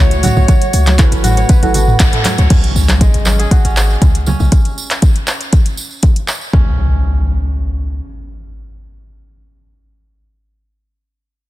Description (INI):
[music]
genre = afro house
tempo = 119 BPM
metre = 4/4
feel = straight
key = C# minor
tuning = A4 = 441 Hz
[part]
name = expressive portamento lead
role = melody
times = 0.0-2.0 s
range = C#5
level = -23 LUFS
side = equal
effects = wide subtle chorus, digital delay
[part]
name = dark analog pad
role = sustained chords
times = 0.1-2.5 s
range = A3 to F#5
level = -26 LUFS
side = left 5 dB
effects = chorus, sidechain pumping
[part]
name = kora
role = arpeggios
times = 0.0-8.3 s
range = G#3 to C#5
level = -23 LUFS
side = right 2 dB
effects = sidechain pumping, digital delay
[part]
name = deep mellow chord stab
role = stabs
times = 0.0-2.5 s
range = F#3 to A4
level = -24 LUFS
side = right 4 dB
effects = chorus, sidechain pumping, digital delay
[part]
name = warm 808-style bass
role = bass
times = 0.0-8.0 s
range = G#1 to C#2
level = -14 LUFS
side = equal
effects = sidechain pumping
[part]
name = afro-pop drum kit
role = drums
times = 0.1-6.4 s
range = crash cymbal, handclaps, hi-hat, toms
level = -18 LUFS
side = equal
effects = none
[part]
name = tambourine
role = percussion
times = 0.1-6.5 s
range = none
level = -28 LUFS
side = right 4 dB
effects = none
[part]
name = congas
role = percussion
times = 0.2-4.5 s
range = none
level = -20 LUFS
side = right 3 dB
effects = none
[part]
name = electronic kick drum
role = drums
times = 0.5-6.6 s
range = none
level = -10 LUFS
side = equal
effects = overdrive
[part]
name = impact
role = sound effects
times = 2.6-10.5 s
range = none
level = -21 LUFS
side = equal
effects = none
[sound]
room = little or no reverb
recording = dense, heavily limited modern master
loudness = -10 LUFS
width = side -16 dB against mid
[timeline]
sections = 0.0-2.5 A section; 2.5-6.5 B section; 6.5-10.6 C section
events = drop 0.0-2.5; band accent 2.0; impact 2.5-4.5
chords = 0.0 F#m7; 2.5 C#5; 6.5 N.C.